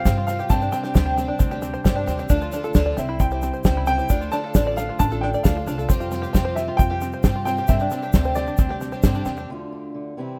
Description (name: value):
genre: indie folk with a building arrangement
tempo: 134 BPM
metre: 4/4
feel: straight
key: D minor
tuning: A4 = 438 Hz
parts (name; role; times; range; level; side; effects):
- warm upright piano; melody; 0.0-9.2 s; D5 to A5; -30 LUFS; equal; none
- picked twelve-string acoustic guitar; accompaniment; 0.0-9.5 s; G2 to C5; -32 LUFS; equal; none
- mellow tonewheel organ; sustained chords; 0.0-9.5 s; C3 to F4; -37 LUFS; equal; slow rotary speaker
- open-back banjo; arpeggios; 0.0-9.5 s; C4 to D5; -30 LUFS; equal; none
- upright bass; bass; 0.1-9.4 s; A1 to G2; -29 LUFS; equal; none
- cloth-damped thuddy drum kit; drums; 0.1-9.3 s; kick drum, snare drum; -22 LUFS; equal; none
- egg shaker; percussion; 0.1-9.4 s; none; -41 LUFS; equal; none
- fingerpicked steel-string acoustic guitar; accompaniment; 9.5-10.4 s; D2 to F4; -33 LUFS; equal; none
room: studio reverb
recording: rough home demo mix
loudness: -22 LUFS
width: mono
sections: 0.0-9.5 A section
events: none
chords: 0.0 Fsus2; 0.5 Gsus4; 2.3 Dm; 3.0 C; 4.1 Dm; 5.9 Fsus2; 7.7 Gsus4; 9.5 Dm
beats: 0.06 | 0.51 0.96 1.41 1.85 | 2.30 2.75 3.20 3.65 | 4.10 4.55 5.00 5.45 | 5.89 6.34 6.79 7.24 | 7.69 8.14 8.59 9.04 | 9.49 9.94